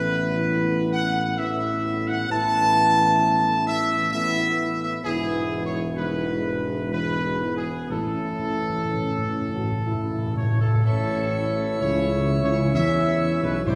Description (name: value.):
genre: classical.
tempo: 59-66 BPM.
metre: 3/4.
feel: straight.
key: A major.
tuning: A4 = 440 Hz.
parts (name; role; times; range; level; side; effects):
bright trumpet section; melody; 0.0-13.8 s; G#4 to A5; -27 LUFS; equal; none.
mellow French horn section; sustained chords; 0.0-13.8 s; B3 to F#4; -32 LUFS; equal; none.
warm trombone section; sustained chords; 0.0-13.8 s; G#2 to E3; -35 LUFS; equal; none.
dark tuba; bass; 0.0-13.8 s; E1 to E2; -30 LUFS; equal; none.
timpani; percussion; 7.9-13.8 s; A2; -28 LUFS; equal; none.
pipe organ, plenum; sustained chords; 10.9-13.8 s; E3 to D5; -28 LUFS; equal; none.
room: wet scoring stage reverb, RT60 1.9 s.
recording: heard from further back in the room, lossy compression artefacts.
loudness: -23 LUFS.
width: mono.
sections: 0.0-10.9 A section; 10.9-13.8 B section.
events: timpani fill 7.9-10.9.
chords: 0.0 Asus2; 5.1 E; 7.9 A.